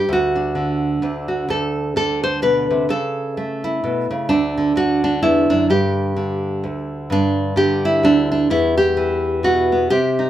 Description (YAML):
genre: folk, solo fingerstyle acoustic guitar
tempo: 128 BPM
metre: 3/4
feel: swing 57% on 8ths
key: G major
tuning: A4 = 438 Hz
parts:
  - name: nylon-string guitar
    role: solo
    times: 0.0-10.3 s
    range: D2 to C5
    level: -16 LUFS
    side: equal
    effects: none
room: moderate studio reverb, RT60 0.7 s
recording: band playing live in one room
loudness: -16 LUFS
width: side -12 dB against mid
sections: 0.0-7.1 A section; 7.1-10.3 A section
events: none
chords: 0.1 D; 2.9 A/C#; 4.3 D; 5.7 G5; 8.5 Em